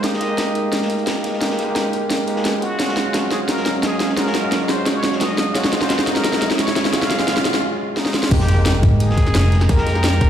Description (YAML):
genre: liquid drum and bass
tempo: 174 BPM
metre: 4/4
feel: straight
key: F phrygian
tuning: A4 = 440 Hz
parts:
  - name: trumpet with plunger mute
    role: melody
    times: 0.0-10.3 s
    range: Eb4 to F5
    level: -26 LUFS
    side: equal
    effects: low-pass filter, digital delay
  - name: barky tine electric piano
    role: accompaniment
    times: 0.0-10.3 s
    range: Ab3 to G5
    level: -24 LUFS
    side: right 1 dB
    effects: digital delay
  - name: lush unison pad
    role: sustained chords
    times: 0.0-10.3 s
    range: Gb3 to Bb5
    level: -26 LUFS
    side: right 1 dB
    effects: chorus, sidechain pumping
  - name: crunchy breakbeat drum kit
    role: drums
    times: 0.0-10.3 s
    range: hi-hat, snare drum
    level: -29 LUFS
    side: equal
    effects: high-pass filter on hats, high-pass filter on snare, high-pass filter on room
  - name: garage drum kit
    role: drums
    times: 0.0-10.3 s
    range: crash cymbal, hi-hat, snare drum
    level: -21 LUFS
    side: equal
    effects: overdrive
  - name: riser and impact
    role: sound effects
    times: 0.2-9.7 s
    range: none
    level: -26 LUFS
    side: equal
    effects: none
  - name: upright bass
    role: bass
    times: 8.3-10.3 s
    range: F1 to Ab2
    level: -16 LUFS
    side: equal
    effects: none
  - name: electronic kick drum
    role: drums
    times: 8.3-10.3 s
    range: none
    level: -16 LUFS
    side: equal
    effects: overdrive
room: light reverb, studio ambience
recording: played on a big sound system in a bare room, large studio reverb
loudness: -16 LUFS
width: side -10 dB against mid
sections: 0.0-8.3 A section; 8.3-10.3 B section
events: build-up 0.0-8.3; drum fill 0.0-7.6, 8.0-8.3; riser 0.2-7.6; break 7.6-8.3; drop 8.3-10.3; impact 8.3-9.7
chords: 0.0 Fm11; 2.6 Ebm11; 8.3 Fm11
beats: | 0.04 0.38 0.73 1.07 | 1.42 1.76 2.11 2.45 | 2.80 3.14 3.49 3.83 | 4.18 4.52 4.87 5.21 | 5.56 5.90 6.25 6.59 | 6.93 7.28 7.62 7.97 | 8.31 8.66 9.00 9.35 | 9.69 10.04